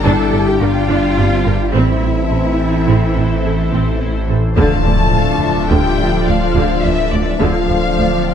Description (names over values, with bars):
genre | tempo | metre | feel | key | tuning
cinematic, hybrid orchestral and electronic film score | 106 BPM | 5/4 | straight | D minor | A4 = 439 Hz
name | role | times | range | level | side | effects
warm symphonic violin section | melody | 0.0-8.3 s | D5 to A5 | -23 LUFS | left 5 dB | none
warm symphonic violin section | second line | 0.0-8.3 s | A4 to A5 | -28 LUFS | left 7 dB | none
rich symphonic viola section | accompaniment | 0.0-8.3 s | D3 to Bb4 | -20 LUFS | right 1 dB | none
mellow French horn section | sustained chords | 0.0-8.3 s | D3 to E4 | -23 LUFS | left 3 dB | none
sweeping resonant pad | sustained chords | 0.0-8.3 s | E3 to D5 | -20 LUFS | equal | chorus
phased detuned saw bass | bass | 0.0-8.3 s | D1 to A1 | -20 LUFS | equal | phaser
warm studio double bass section | bass | 0.0-8.1 s | G1 to D2 | -19 LUFS | right 3 dB | none
warm symphonic cello section | bass | 0.0-8.0 s | D2 to A4 | -24 LUFS | right 2 dB | none
impact | sound effects | 4.6-7.4 s | none | -21 LUFS | left 1 dB | none
room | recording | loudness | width
moderate scoring stage reverb, RT60 1.6 s | dark, warm production | -12 LUFS | side -8 dB against mid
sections
0.0-4.6 A section; 4.6-8.3 B section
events
impact 4.6-7.4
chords
0.0 G5; 1.7 Am; 4.6 Dm